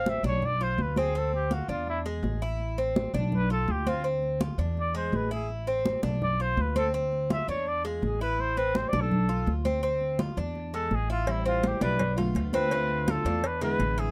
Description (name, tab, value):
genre	latin, Cuban son and guajira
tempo	166 BPM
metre	4/4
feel	straight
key	A minor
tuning	A4 = 441 Hz
part	breathy trumpet	melody	0.0-14.1 s	E4 to F5	-33 LUFS	equal	none
part	Cuban tres	arpeggios	0.0-14.1 s	G#3 to F4	-34 LUFS	equal	none
part	upright bass	bass	0.0-14.1 s	A1 to E2	-33 LUFS	equal	none
part	congas	percussion	0.1-14.1 s	none	-35 LUFS	equal	none
part	picked plugged-in steel-string acoustic guitar	accompaniment	11.3-14.1 s	D3 to F4	-35 LUFS	equal	none
part	cowbell	percussion	11.3-14.1 s	none	-39 LUFS	equal	none
room	light reverb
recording	dark, warm production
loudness	-28 LUFS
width	mono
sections	0.0-14.1 A section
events	trumpet solo 0.0-14.1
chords	0.4 Bdim; 1.1 Dm7; 1.9 E7; 2.6 Amadd9; 3.3 Bdim; 4.0 Dm7; 4.8 E7; 5.5 Amadd9; 6.2 Bdim; 6.9 Dm7; 7.7 E7; 8.4 Amadd9; 9.1 Bm7b5; 9.8 Dm7; 10.6 E7; 11.3 Am9; 12.0 Bm7b5; 12.7 Dm7; 13.4 E7